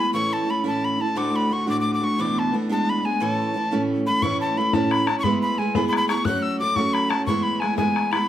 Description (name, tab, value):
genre	celtic folk, Celtic jig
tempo	118 BPM (dotted quarters)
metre	6/8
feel	straight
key	A major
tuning	A4 = 441 Hz
part	breathy bright mid whistle	melody	0.0-8.3 s	G#5 to F#6	-24 LUFS	left 1 dB	plate reverb
part	picked steel-string acoustic guitar	accompaniment	0.0-8.3 s	D2 to G#4	-23 LUFS	right 2 dB	none
part	bright cello	drone	0.0-8.3 s	A2	-32 LUFS	left 1 dB	none
part	bodhran	percussion	4.2-8.2 s	none	-26 LUFS	left 6 dB	none
room	wet studio reverb, RT60 0.8 s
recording	none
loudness	-20 LUFS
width	side -11 dB against mid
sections	0.0-4.2 A section; 4.2-8.3 A section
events	none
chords	0.1 A; 1.2 D; 2.2 E7sus4; 2.7 E7; 3.2 A; 5.2 E; 6.3 F#m; 7.3 E